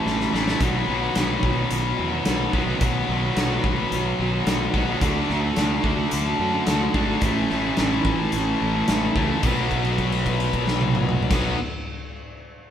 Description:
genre	classic rock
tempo	109 BPM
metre	4/4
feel	straight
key	unclear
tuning	A4 = 436 Hz
part	crunchy overdriven guitar	riff	0.0-11.6 s	A2 to F#4	-26 LUFS	right 4 dB	none
part	tight distorted guitar	riff	0.0-11.6 s	A2 to D4	-25 LUFS	left 6 dB	distortion
part	fuzz fingered electric bass	bass	0.1-11.5 s	G#1 to F#2	-28 LUFS	equal	overdrive
part	big rock drum kit	drums	0.1-11.4 s	crash cymbal, hi-hat, kick drum, snare drum, toms	-25 LUFS	equal	none
part	tonewheel organ	sustained chords	0.6-11.6 s	E3 to B4	-35 LUFS	equal	none
room	wet stone room reverb, RT60 1.2 s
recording	band playing live in one room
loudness	-20 LUFS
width	side -9 dB against mid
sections	0.0-9.4 A section; 9.4-11.6 B section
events	drum fill 0.1-0.6; held note 9.4-11.3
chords	0.0 A; 0.6 B; 5.0 D; 7.2 A; 9.4 B

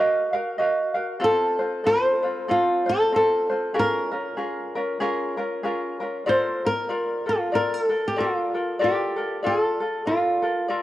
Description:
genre	hawaiian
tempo	95 BPM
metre	4/4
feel	swing 59% on 8ths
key	Bb minor, Bb major from 6.3 s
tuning	A4 = 441 Hz
part	flamenco guitar	melody	0.0-10.8 s	F4 to C5	-22 LUFS	equal	none
part	ukulele	accompaniment	0.0-10.8 s	C4 to F5	-25 LUFS	equal	cassette tape
room	moderate lush hall reverb, RT60 2.9 s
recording	home recording on cassette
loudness	-21 LUFS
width	side -14 dB against mid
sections	0.0-6.3 A section; 6.3-10.8 B section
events	none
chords	0.0 Ebmadd9; 1.2 F; 3.8 Bbm7; 6.3 Bbmaj7

